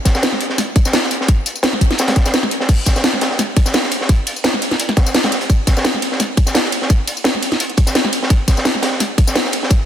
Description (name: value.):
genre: drum and bass.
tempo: 171 BPM.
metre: 4/4.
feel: swing 54% on 16ths.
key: none.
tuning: none.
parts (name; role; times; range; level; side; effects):
crunchy breakbeat drum kit; drums; 0.1-9.8 s; hi-hat, snare drum; -21 LUFS; equal; high-pass filter on hats, high-pass filter on snare, high-pass filter on room.
electronic kick drum; drums; 0.1-9.8 s; none; -13 LUFS; equal; none.
garage drum kit; drums; 0.1-9.8 s; crash cymbal, hi-hat, ride cymbal, snare drum, tambourine; -17 LUFS; equal; none.
room: light reverb.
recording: dense, heavily limited modern master.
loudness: -14 LUFS.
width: side -10 dB against mid.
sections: 0.0-9.9 A section.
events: none.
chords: none.